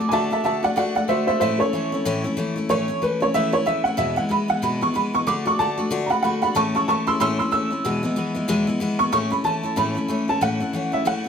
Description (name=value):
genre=rock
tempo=187 BPM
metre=4/4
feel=swing 59% on 8ths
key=A major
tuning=A4 = 439 Hz
part: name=picked steel-string acoustic guitar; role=accompaniment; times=0.0-11.3 s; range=E2 to F#4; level=-23 LUFS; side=left 2 dB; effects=none
part: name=dark upright piano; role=melody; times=0.1-11.3 s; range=A4 to E6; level=-22 LUFS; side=right 2 dB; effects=analog delay
room=moderate small room reverb, RT60 0.5 s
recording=none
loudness=-19 LUFS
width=side -7 dB against mid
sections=0.0-9.1 A section; 9.1-11.3 B section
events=upright piano solo 0.0-9.1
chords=0.0 D; 1.4 A; 4.0 E; 5.3 D; 6.6 A; 7.8 E; 9.1 A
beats=| 0.13 0.45 0.77 1.09 | 1.42 1.74 2.06 2.38 | 2.70 3.02 3.34 3.67 | 3.99 4.31 4.63 4.95 | 5.27 5.59 5.92 6.24 | 6.56 6.88 7.20 7.52 | 7.84 8.16 8.49 8.81 | 9.13 9.45 9.77 10.09 | 10.42 10.74 11.06